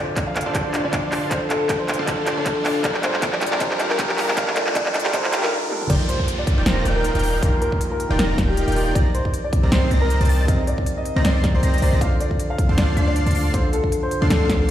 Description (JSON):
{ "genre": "future bass", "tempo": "157 BPM", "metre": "4/4", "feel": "swing 56% on 16ths, half-time", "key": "Eb lydian", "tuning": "A4 = 440 Hz", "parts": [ { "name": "dark baby grand piano", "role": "melody", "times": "0.0-14.7 s", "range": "G4 to F5", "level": "-26 LUFS", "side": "left 2 dB", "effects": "sidechain pumping, ping-pong delay" }, { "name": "barky tine electric piano", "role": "accompaniment", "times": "0.0-14.7 s", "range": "C3 to F5", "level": "-28 LUFS", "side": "right 2 dB", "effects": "sidechain pumping" }, { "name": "riser, swell and downlifter", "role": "sound effects", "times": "0.1-9.0 s", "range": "none", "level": "-33 LUFS", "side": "left 1 dB", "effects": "none" }, { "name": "big-room dance drum kit", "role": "drums", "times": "0.2-14.7 s", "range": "crash cymbal, handclaps, hi-hat, snare drum, toms", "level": "-24 LUFS", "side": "equal", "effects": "overdrive" }, { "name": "electronic kick drum", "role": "drums", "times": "0.2-14.6 s", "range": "none", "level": "-22 LUFS", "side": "equal", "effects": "overdrive" }, { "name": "dense compressed supersaw", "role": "riff", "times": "0.5-14.7 s", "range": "C4 to C6", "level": "-28 LUFS", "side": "equal", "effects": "sidechain pumping, low-pass filter" }, { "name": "warm 808-style bass", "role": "bass", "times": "0.5-14.7 s", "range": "Eb1 to D2", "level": "-20 LUFS", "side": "equal", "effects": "sidechain pumping, high-pass filter" }, { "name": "airy dreamy lead", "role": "arpeggios", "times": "5.9-14.7 s", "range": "G6 to C7", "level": "-33 LUFS", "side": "left 1 dB", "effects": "chorus, vintage 12-bit sampler grit, sidechain pumping, ping-pong delay" } ], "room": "moderate digital room reverb, RT60 1.1 s, digital ambience", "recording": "played on a big sound system in a bare room, large studio reverb, high-pass filter", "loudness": "-18 LUFS", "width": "side -11 dB against mid", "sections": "0.0-5.9 A section; 5.9-14.7 B section", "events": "build-up 0.0-5.9; drum fill 0.0-5.5, 5.7; riser 0.1-5.9; swell 5.1-5.9; break 5.5-5.9; drop 5.9-14.7", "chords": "0.0 Dm7; 2.8 Gm9; 5.9 Ebmaj9; 9.0 Cm9; 12.0 Dm7" }